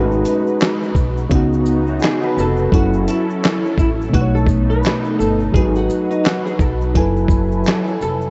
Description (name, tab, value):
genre	lo-fi hip hop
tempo	85 BPM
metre	4/4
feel	swing 60% on 16ths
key	F# dorian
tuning	A4 = 440 Hz
part	electric guitar at the edge of break-up	second line	0.0-2.7 s	C#4 to B4	-30 LUFS	equal	ensemble chorus, low-pass filter, tape echo
part	reed electric piano	accompaniment	0.0-8.3 s	B2 to G#5	-22 LUFS	equal	cassette tape, low-pass filter
part	lush unison pad	sustained chords	0.0-8.3 s	C#3 to G#5	-27 LUFS	equal	chorus, phaser, low-pass filter
part	upright bass	bass	0.0-8.3 s	E#1 to C#2	-23 LUFS	equal	none
part	tube shaker	percussion	0.1-8.3 s	none	-56 LUFS	equal	none
part	dusty soul sampler-style drum kit	drums	0.3-8.2 s	handclaps, hi-hat, kick drum, shaker, snare drum	-21 LUFS	equal	none
part	archtop guitar, miked and amplified	melody	2.4-8.3 s	D#4 to B4	-26 LUFS	equal	ensemble chorus, low-pass filter, tape echo
room	moderate huge ambient reverb, RT60 4.6 s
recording	dreamy mix soaked in reverb, nothing above 7.9 kHz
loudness	-17 LUFS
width	mono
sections	0.0-8.3 A section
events	none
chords	0.0 G#m7; 1.3 C#9sus4; 2.7 F#m7; 4.1 B9; 5.5 G#m7; 7.0 F#m11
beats	0.60 1.31 2.02 | 2.72 3.43 4.13 4.84 | 5.54 6.25 6.96 7.66